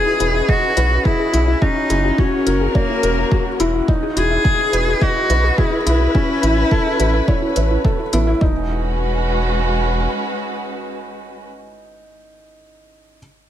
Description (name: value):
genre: piano and strings electronica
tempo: 106 BPM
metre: 4/4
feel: straight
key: E major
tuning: A4 = 441 Hz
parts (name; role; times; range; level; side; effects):
- rich cello; melody; 0.0-7.8 s; A#3 to G#4; -20 LUFS; left 1 dB; tape echo
- dark chamber string section; sustained chords; 0.0-11.4 s; G#3 to B4; -24 LUFS; equal; sidechain pumping
- felt-muted upright piano; riff; 0.0-13.2 s; C#4 to D#5; -22 LUFS; equal; tape echo
- warbly dusty pluck; arpeggios; 0.1-8.7 s; B3 to E5; -27 LUFS; left 3 dB; none
- round analog bass; bass; 0.2-10.1 s; E1 to B1; -19 LUFS; equal; tube saturation, sidechain pumping
- electronic hi-hat; drums; 0.2-8.2 s; none; -26 LUFS; left 2 dB; overdrive, studio reverb
- electronic kick drum; drums; 0.5-8.5 s; none; -18 LUFS; equal; overdrive, studio reverb
room: light reverb, small room ambience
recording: faint mains hum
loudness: -15 LUFS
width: side -11 dB against mid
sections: 0.0-8.4 A section; 8.4-10.7 B section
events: drop 0.0-8.4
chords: 0.0 Emaj7; 1.6 F#7; 3.9 Emaj7; 6.1 Aadd9; 8.4 Emaj7